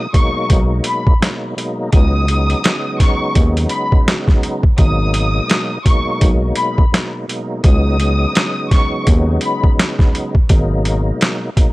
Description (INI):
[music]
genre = hip hop, boom-bap hip-hop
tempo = 84 BPM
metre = 4/4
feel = swing 58% on 16ths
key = G# minor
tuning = A4 = 442 Hz
[part]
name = warm studio violin section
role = melody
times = 0.0-9.6 s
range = B5 to D#6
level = -22 LUFS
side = left 2 dB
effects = high-pass filter, low-pass filter, analog delay
[part]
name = bright tonewheel organ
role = accompaniment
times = 0.0-11.7 s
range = B2 to D#4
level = -21 LUFS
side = equal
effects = chorus vibrato, slow rotary speaker, high-pass filter, low-pass filter
[part]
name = boom bap sampler-style drum kit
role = drums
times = 0.1-11.7 s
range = hi-hat, kick drum, snare drum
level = -13 LUFS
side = equal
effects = none
[part]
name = growling FM bass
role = bass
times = 0.5-11.1 s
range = G#1 to D#2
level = -16 LUFS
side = equal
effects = transformer saturation
[sound]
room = little or no reverb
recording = dry, gritty hardware recording, cassette tape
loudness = -13 LUFS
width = side -20 dB against mid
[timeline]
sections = 0.0-11.7 A section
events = none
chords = 0.0 G#m7; 1.9 C#7sus4; 4.8 G#m7; 7.6 C#7sus4; 10.5 G#m7